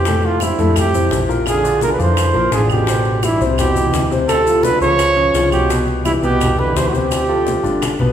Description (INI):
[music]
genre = Afro-Cuban jazz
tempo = 170 BPM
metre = 4/4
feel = straight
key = unclear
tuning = A4 = 440 Hz
[part]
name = breathy trumpet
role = melody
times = 0.0-8.1 s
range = E4 to Db5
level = -18 LUFS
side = right 3 dB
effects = none
[part]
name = mellow trombone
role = second line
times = 0.0-7.8 s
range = G2 to F3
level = -24 LUFS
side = right 3 dB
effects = none
[part]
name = hollow-body short-scale fingered electric bass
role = bass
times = 0.0-8.1 s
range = G1 to F2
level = -20 LUFS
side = equal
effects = none
[part]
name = warm baby grand piano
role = accompaniment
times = 0.1-8.1 s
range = A2 to F5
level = -20 LUFS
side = left 3 dB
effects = none
[part]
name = bongos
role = percussion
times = 0.1-8.1 s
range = none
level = -26 LUFS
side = left 4 dB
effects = none
[part]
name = congas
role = percussion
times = 0.1-8.1 s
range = none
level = -28 LUFS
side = left 2 dB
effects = none
[part]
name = maracas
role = percussion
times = 0.1-8.0 s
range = none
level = -31 LUFS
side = left 6 dB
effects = none
[part]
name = claves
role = percussion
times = 0.4-8.0 s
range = none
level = -32 LUFS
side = right 6 dB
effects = none
[sound]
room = wet recital hall reverb, RT60 1.8 s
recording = recorded in a church or concert hall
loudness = -13 LUFS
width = side -9 dB against mid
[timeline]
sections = 0.0-8.1 A section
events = drum fill 7.8-8.1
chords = 0.1 Fmaj9; 1.5 Bb7#11; 2.9 Am11; 4.3 Dm7; 5.0 Db; 5.7 Cmaj9; 7.1 Dm7